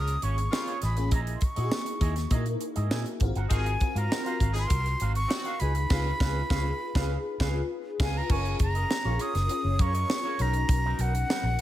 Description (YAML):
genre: polished 1980s jazz-funk pop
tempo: 100 BPM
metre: 4/4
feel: straight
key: F# major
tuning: A4 = 440 Hz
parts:
  - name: breathy concert flute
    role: melody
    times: 0.0-11.6 s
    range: F#5 to D#6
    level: -32 LUFS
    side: equal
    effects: none
  - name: clear horn section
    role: second line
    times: 0.0-5.5 s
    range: C#3 to B#4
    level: -38 LUFS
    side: left 4 dB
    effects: none
  - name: FM electric piano with soft pad layer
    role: accompaniment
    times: 0.0-11.6 s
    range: A#3 to C#5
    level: -35 LUFS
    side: left 4 dB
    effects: ensemble chorus
  - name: vintage muted fingered electric bass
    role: bass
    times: 0.0-11.6 s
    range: F#1 to A#2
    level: -28 LUFS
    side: equal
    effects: none
  - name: electric guitar with an envelope filter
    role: riff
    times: 0.1-11.5 s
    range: F#3 to G#5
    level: -38 LUFS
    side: right 7 dB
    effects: lush chorus
  - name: tight funk drum kit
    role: drums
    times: 0.1-11.6 s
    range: crash cymbal, hi-hat, kick drum, snare drum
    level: -29 LUFS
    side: equal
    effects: gated reverb
room: studio reverb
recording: none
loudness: -25 LUFS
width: side -13 dB against mid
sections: 0.0-8.3 A section; 8.3-11.6 B section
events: band accent 5.9-8.3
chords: 0.0 A#m7; 1.1 F#13/A#; 3.2 G#13; 5.6 C#7; 8.3 F#maj7; 10.4 Bmaj7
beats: 0.52 | 1.12 1.72 2.31 2.91 | 3.51 4.11 4.71 5.30 | 5.90 6.50 7.10 7.70 | 8.30 8.90 9.49 10.09 | 10.69 11.29